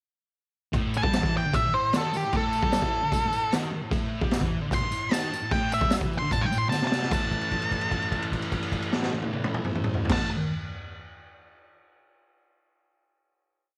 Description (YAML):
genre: garage rock duo or trio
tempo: 150 BPM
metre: 4/4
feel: straight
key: unclear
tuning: A4 = 442 Hz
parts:
  - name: thick fuzz guitar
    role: riff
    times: 0.7-10.3 s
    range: A2 to A3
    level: -33 LUFS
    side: equal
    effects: distortion
  - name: raw garage drum kit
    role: drums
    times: 0.7-10.2 s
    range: crash cymbal, kick drum, snare drum, toms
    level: -30 LUFS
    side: equal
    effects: none
  - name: tambourine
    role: percussion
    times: 0.7-7.3 s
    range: none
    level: -47 LUFS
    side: equal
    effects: none
  - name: octave-fuzz lead guitar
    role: melody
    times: 1.0-10.3 s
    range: G4 to C6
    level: -30 LUFS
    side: equal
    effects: distortion
room: moderate echo chamber reverb, RT60 1.5 s, small room ambience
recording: none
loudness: -27 LUFS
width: mono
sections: 0.7-7.1 pre-chorus; 7.1-10.3 final chord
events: drum fill 6.7-7.1; held note 7.1-10.1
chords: 0.7 A5